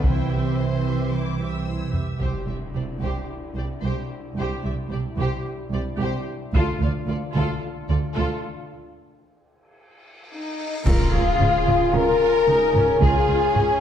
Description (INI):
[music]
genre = cinematic, epic orchestral film score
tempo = 111 BPM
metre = 4/4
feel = straight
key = C major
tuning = A4 = 438 Hz
[part]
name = warm symphonic violin section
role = melody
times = 0.0-13.8 s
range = Eb4 to F5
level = -33 LUFS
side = left 6 dB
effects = none
[part]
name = rich studio violin section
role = second line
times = 0.0-13.8 s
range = Eb4 to E6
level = -34 LUFS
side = left 2 dB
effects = none
[part]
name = rich chamber viola section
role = accompaniment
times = 0.0-13.8 s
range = Db4 to E5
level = -33 LUFS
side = right 3 dB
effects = none
[part]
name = warm French horn section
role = sustained chords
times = 0.0-13.8 s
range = C4 to Bb4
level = -25 LUFS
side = left 4 dB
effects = none
[part]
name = dark symphonic cello section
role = bass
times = 0.0-13.6 s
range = C2 to E3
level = -29 LUFS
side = right 3 dB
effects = none
[part]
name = dark symphonic double bass section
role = bass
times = 0.0-13.6 s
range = C2 to D2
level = -27 LUFS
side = right 3 dB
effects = none
[part]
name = taiko ensemble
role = drums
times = 0.0-3.3, 6.5-7.6, 10.9-13.8 s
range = none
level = -24 LUFS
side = equal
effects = none
[part]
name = impact and cymbal swell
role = sound effects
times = 2.2-4.4, 10.2-13.0 s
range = none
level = -35 LUFS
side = equal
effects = none
[part]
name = mellow concert flute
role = second line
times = 10.3-13.8 s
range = Eb5 to Bb5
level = -33 LUFS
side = left 1 dB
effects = none
[part]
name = mellow trombone section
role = sustained chords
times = 10.9-13.8 s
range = Db3 to Db4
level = -33 LUFS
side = right 2 dB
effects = none
[part]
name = dark trumpet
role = stabs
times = 10.9-13.8 s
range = Ab5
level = -29 LUFS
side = right 2 dB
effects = none
[part]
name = clear tuba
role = bass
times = 10.9-13.7 s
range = Db2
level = -31 LUFS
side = right 5 dB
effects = none
[part]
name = clash cymbals and concert bass drum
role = percussion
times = 10.9-11.9 s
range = none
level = -27 LUFS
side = equal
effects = none
[sound]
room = wet concert hall reverb, RT60 1.7 s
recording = dark, warm production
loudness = -20 LUFS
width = side -9 dB against mid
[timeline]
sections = 0.0-2.2 A section; 2.2-10.9 B section; 10.9-13.8 C section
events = impact 2.2-4.4, 10.9-13.0; break 8.7-10.9; drum fill 10.1-10.9; cymbal swell 10.2-10.9; band accent 10.9-11.4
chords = 0.0 Cadd9; 6.5 Dm; 8.7 N.C.; 10.9 Db